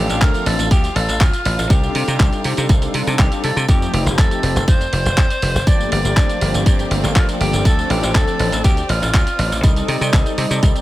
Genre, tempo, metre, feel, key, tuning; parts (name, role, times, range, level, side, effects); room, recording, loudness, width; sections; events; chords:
nu-disco, nu disco; 121 BPM; 4/4; straight; C dorian; A4 = 443 Hz
breathy tenor saxophone; melody; 0.0-10.8 s; Eb4 to D5; -24 LUFS; equal; tape echo
warm analog pad; accompaniment; 0.0-10.8 s; F3 to D5; -24 LUFS; left 1 dB; chorus, cassette tape, sidechain pumping
clear studio string section; sustained chords; 0.0-10.8 s; C4 to F5; -29 LUFS; equal; sidechain pumping
dry thumbed slap bass; bass; 0.0-10.7 s; F1 to C3; -20 LUFS; equal
dusty soul sampler-style drum kit; drums; 0.1-10.8 s; handclaps, hi-hat, tambourine; -24 LUFS; right 1 dB
electronic kick drum; drums; 0.2-10.7 s; -14 LUFS; equal
digital ambience; -14 LUFS; side -16 dB against mid
0.0-10.8 A section
0.0 Dm7; 1.7 Cm69; 3.7 F9; 5.7 Gm9; 7.7 Dm7; 9.6 Cm69